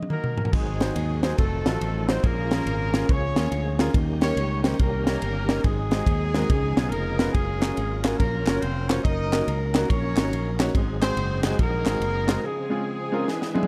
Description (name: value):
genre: uptempo gospel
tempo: 141 BPM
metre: 4/4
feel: swing 65% on 8ths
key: unclear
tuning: A4 = 440 Hz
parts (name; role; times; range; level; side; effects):
- crisp fusion drum kit; drums; 0.0-13.7 s; crash cymbal, kick drum, ride cymbal, snare drum, toms; -27 LUFS; equal; none
- warm horn section; melody; 0.1-13.7 s; Ab3 to Eb5; -32 LUFS; equal; none
- clear concert grand piano; accompaniment; 0.5-13.7 s; Ab2 to Db5; -32 LUFS; equal; none
- tonewheel organ; sustained chords; 0.5-13.7 s; Db3 to B4; -37 LUFS; equal; slow rotary speaker, chorus vibrato
- fingered electric bass; bass; 0.5-12.4 s; F1 to Eb2; -30 LUFS; equal; none
- group handclap; percussion; 7.6-12.4 s; none; -36 LUFS; equal; none
room: small room ambience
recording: dark, warm production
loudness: -24 LUFS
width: mono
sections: 0.5-13.7 A section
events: drum fill 0.0-0.5, 13.3-13.7; stop 0.0-0.5; break 12.4-13.7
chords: 0.0 Ebm; 0.5 Ab7; 1.4 F7b9; 2.2 Bbm7; 3.9 Eb7; 5.6 Ab7; 6.5 Db9; 7.3 Gbmaj7; 9.0 Ebm7/Gb; 10.7 Ab7; 12.4 Dbmaj7